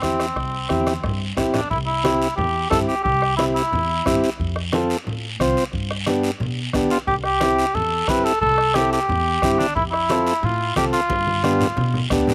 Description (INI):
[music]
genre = latin, cumbia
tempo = 179 BPM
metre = 4/4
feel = straight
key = C major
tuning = A4 = 439 Hz
[part]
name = warm cor anglais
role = melody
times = 0.0-4.2, 6.9-12.1 s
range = C4 to B4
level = -23 LUFS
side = equal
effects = slapback echo
[part]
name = combo organ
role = accompaniment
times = 0.0-12.3 s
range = B3 to C5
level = -25 LUFS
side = equal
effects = slapback echo
[part]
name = upright bass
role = bass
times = 0.0-12.2 s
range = C2 to B2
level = -29 LUFS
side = equal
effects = none
[part]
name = bombo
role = percussion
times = 0.0-12.3 s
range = none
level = -32 LUFS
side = equal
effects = none
[part]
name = congas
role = percussion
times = 0.0-12.3 s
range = none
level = -31 LUFS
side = equal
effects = none
[part]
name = guiro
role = percussion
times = 0.0-12.3 s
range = none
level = -34 LUFS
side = equal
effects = none
[sound]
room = little or no reverb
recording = recorded outdoors, with no room sound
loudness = -21 LUFS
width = mono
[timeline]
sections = 0.0-1.7 A section; 1.7-12.3 B section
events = drum fill 0.7-1.7, 11.1-12.3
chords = 0.0 C; 4.4 F; 5.7 G; 7.1 C; 9.8 F; 11.1 G7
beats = 0.03 | 0.36 0.70 1.04 1.37 | 1.71 2.05 2.38 2.72 | 3.05 3.39 3.73 4.06 | 4.40 4.73 5.07 5.40 | 5.74 6.08 6.41 6.75 | 7.08 7.42 7.75 8.09 | 8.42 8.76 9.09 9.43 | 9.76 10.10 10.43 10.77 | 11.10 11.44 11.77 12.11